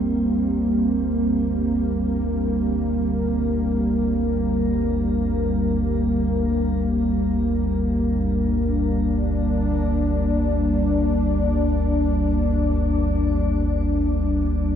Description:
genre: dark ambient drone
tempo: free time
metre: none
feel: none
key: G minor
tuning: A4 = 440 Hz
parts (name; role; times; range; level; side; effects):
- sweeping resonant pad; sustained chords; 0.0-14.8 s; G3 to D4; -21 LUFS; equal; chorus, shimmer reverb
- deep rumbling drone; drone; 0.0-14.8 s; G1 to D2; -23 LUFS; left 1 dB; built-in reverb
room: wet cathedral reverb, RT60 5.1 s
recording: in a vast, echoing space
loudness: -19 LUFS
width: side -9 dB against mid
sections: 0.0-14.8 A section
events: fade-in on synth drone 0.0-14.8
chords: 0.0 Gm

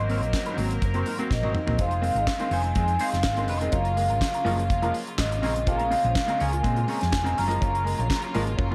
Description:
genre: disco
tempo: 124 BPM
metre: 4/4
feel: straight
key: unclear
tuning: A4 = 439 Hz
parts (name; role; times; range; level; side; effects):
- vibraphone with soft mallets; melody; 0.0-8.3 s; Eb5 to Bb5; -30 LUFS; equal; tape echo
- clean electric guitar; accompaniment; 0.0-8.7 s; Db4 to Eb5; -38 LUFS; equal; wah
- clear studio string section; sustained chords; 0.0-8.7 s; Db3 to Bb4; -38 LUFS; equal; none
- hollow-body short-scale fingered electric bass; bass; 0.0-8.7 s; F1 to Bb2; -30 LUFS; equal; none
- bright baby grand piano; accompaniment; 0.1-8.7 s; Ab2 to C4; -34 LUFS; equal; none
- damped 70s drum kit; drums; 0.1-8.7 s; handclaps, hi-hat, kick drum, snare drum, toms; -31 LUFS; equal; gated reverb
room: light reverb, small room ambience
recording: none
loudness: -25 LUFS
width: mono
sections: 0.0-1.8 A section; 1.8-8.7 B section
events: drum fill 1.3-1.8, 8.6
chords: 0.0 Ab9; 1.8 Fm7; 3.7 Gbmaj7; 5.4 Bbm7; 7.4 Gbmaj7

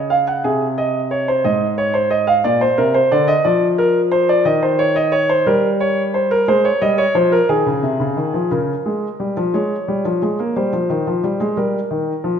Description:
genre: classical, baroque-style two-part invention for grand piano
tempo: 60 BPM (dotted quarters)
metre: 12/8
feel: straight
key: unclear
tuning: A4 = 442 Hz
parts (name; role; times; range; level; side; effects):
- warm concert grand piano; solo; 0.0-12.4 s; Ab2 to Gb5; -15 LUFS; equal; none
room: wet recital hall reverb, RT60 1.5 s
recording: minimal, uncompressed stereo recording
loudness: -15 LUFS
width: side -7 dB against mid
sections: 0.0-8.5 A section; 8.5-12.4 B section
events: none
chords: 0.4 Ab/C; 2.5 Bb; 4.5 Eb7; 6.5 Ab; 8.5 Bbm/Db; 10.6 Eb69

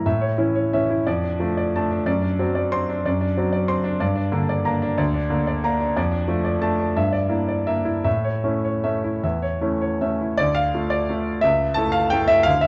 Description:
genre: classical, piano waltz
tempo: 148-193 BPM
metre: 3/4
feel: rubato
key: D minor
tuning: A4 = 439 Hz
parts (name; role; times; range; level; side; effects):
- clear grand piano; solo; 0.0-12.7 s; C#2 to C6; -22 LUFS; equal; none
room: light reverb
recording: dark, warm production, nothing above 7.8 kHz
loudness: -22 LUFS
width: mono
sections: 0.0-10.4 A section; 10.4-12.7 B section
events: none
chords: 0.1 A; 1.1 Dm/F; 2.1 D7/F#; 4.0 Gm; 6.0 Dm/F; 7.0 Em7b5/G; 8.1 A; 10.4 Dm; 11.4 A/C#

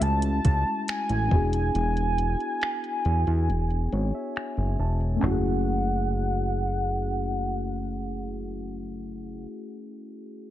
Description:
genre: contemporary R&B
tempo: 69 BPM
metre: 4/4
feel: straight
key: F# minor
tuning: A4 = 439 Hz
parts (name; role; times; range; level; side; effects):
- warm velvety synth lead; melody; 0.0-9.5 s; F#5 to A5; -30 LUFS; equal; chorus, ping-pong delay
- muted felt-like synth keys; accompaniment; 0.0-10.5 s; G#3 to A5; -31 LUFS; left 1 dB; chorus
- fat analog bass; bass; 0.0-9.5 s; E1 to E2; -26 LUFS; equal; none
- smooth R&B drum kit; drums; 0.0-5.4 s; finger snaps, handclaps, hi-hat, kick drum, snare drum, toms; -28 LUFS; equal; none
room: little or no reverb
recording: low-pass filter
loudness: -24 LUFS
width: side -13 dB against mid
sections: 0.0-5.2 A section; 5.2-8.7 B section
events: filter sweep 0.0-5.2; break 1.7-5.2; synth keys fill 3.5-5.2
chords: 0.0 F#m7; 1.3 E7; 5.2 F#m7

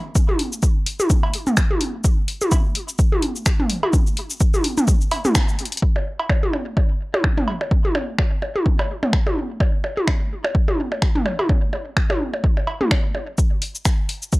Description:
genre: techno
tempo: 127 BPM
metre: 4/4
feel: swing 57% on 16ths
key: none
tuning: none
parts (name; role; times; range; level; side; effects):
- electronic kick drum; drums; 0.2-14.4 s; none; -18 LUFS; equal; overdrive
- punchy analog drum machine; drums; 0.2-14.4 s; finger snaps, hi-hat, shaker; -25 LUFS; left 1 dB; overdrive, low-pass filter on hats, low-pass filter on perc, low-pass filter on snare
- electronic toms, cowbell and percussion blips; percussion; 0.3-13.3 s; none; -22 LUFS; equal; tape echo
room: little or no reverb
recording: dry, gritty hardware recording, cassette tape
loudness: -18 LUFS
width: side -22 dB against mid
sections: 0.0-5.8 A section; 5.8-13.4 B section; 13.4-14.4 C section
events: band accent 5.4; drum fill 5.6; filter sweep on drum 5.8-13.4; build-up 13.4-14.4; filter sweep 13.4-14.4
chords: none

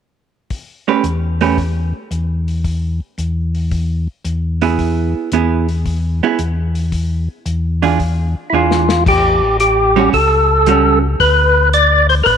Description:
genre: soul jazz organ trio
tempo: 112 BPM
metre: 4/4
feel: swing 68% on 8ths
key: A mixolydian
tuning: A4 = 440 Hz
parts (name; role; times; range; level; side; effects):
- warm soul drum kit; drums; 0.5-12.4 s; crash cymbal, hi-hat, kick drum, snare drum; -23 LUFS; left 4 dB; none
- vintage hollow-body jazz guitar; accompaniment; 0.9-11.0 s; E3 to B4; -17 LUFS; right 9 dB; none
- mellow tonewheel organ; bass; 1.0-12.4 s; A1 to E2; -17 LUFS; left 1 dB; slow rotary speaker
- percussive tonewheel organ; melody; 8.5-12.4 s; E4 to D5; -12 LUFS; left 1 dB; slow rotary speaker, overdrive
room: light reverb, studio reverb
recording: 1960s-style stereo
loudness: -13 LUFS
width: side -7 dB against mid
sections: 0.5-9.1 A section; 9.1-12.4 B section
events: drum fill 8.5-9.1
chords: 0.5 A9; 2.6 E; 6.9 E7b9; 9.1 A6; 11.2 D5

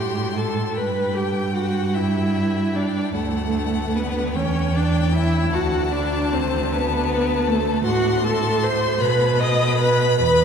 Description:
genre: classical, slow romantic movement for string quartet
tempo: 51 BPM (dotted quarters)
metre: 6/8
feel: rubato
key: unclear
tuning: A4 = 439 Hz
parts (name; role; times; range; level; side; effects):
- clear violin; melody; 0.0-10.4 s; F#5 to C6; -30 LUFS; left 9 dB; none
- rich violin; second line; 0.0-10.4 s; A4 to D#6; -29 LUFS; left 4 dB; none
- rich viola; accompaniment; 0.0-10.4 s; A3 to D#5; -22 LUFS; right 1 dB; none
- rich cello; bass; 0.0-10.4 s; D2 to B2; -22 LUFS; right 2 dB; none
room: wet cathedral reverb, RT60 5.2 s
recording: recorded in a church or concert hall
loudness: -18 LUFS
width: side -7 dB against mid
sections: 0.0-10.4 A section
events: none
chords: 0.0 Am7; 0.8 G6; 3.2 D; 4.3 Em7; 5.5 D5; 7.8 Am6; 9.0 B

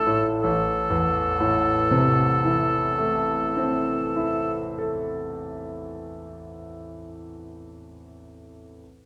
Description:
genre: classical, romantic duo for oboe and grand piano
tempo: 39 BPM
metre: 4/4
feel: rubato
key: A minor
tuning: A4 = 440 Hz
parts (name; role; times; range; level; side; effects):
- warm oboe; melody; 0.0-4.6 s; A4; -26 LUFS; equal; none
- bright concert grand piano; accompaniment; 0.0-8.8 s; A1 to A4; -28 LUFS; equal; none
room: wet recital hall reverb, RT60 1.5 s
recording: recorded in a church or concert hall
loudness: -23 LUFS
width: mono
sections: 0.4-6.5 A section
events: none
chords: 0.4 Am

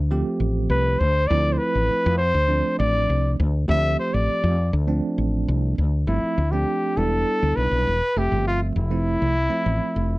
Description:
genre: electric jazz fusion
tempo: 101 BPM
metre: 4/4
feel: straight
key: D dorian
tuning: A4 = 439 Hz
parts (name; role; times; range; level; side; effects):
- woody fretless electric bass; bass; 0.0-10.2 s; E1 to F2; -22 LUFS; equal; none
- bell-like tine electric piano; accompaniment; 0.1-10.2 s; F3 to E5; -26 LUFS; right 3 dB; fast stereo tremolo
- warm trumpet; melody; 0.7-10.2 s; E4 to E5; -23 LUFS; equal; slapback echo
room: little or no reverb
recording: dry, close 1970s-style studio recording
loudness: -19 LUFS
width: side -20 dB against mid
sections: 0.0-6.1 A section; 6.1-10.2 B section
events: none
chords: 0.0 Dm9; 6.1 G13sus4; 7.0 Em7; 8.2 Fmaj9

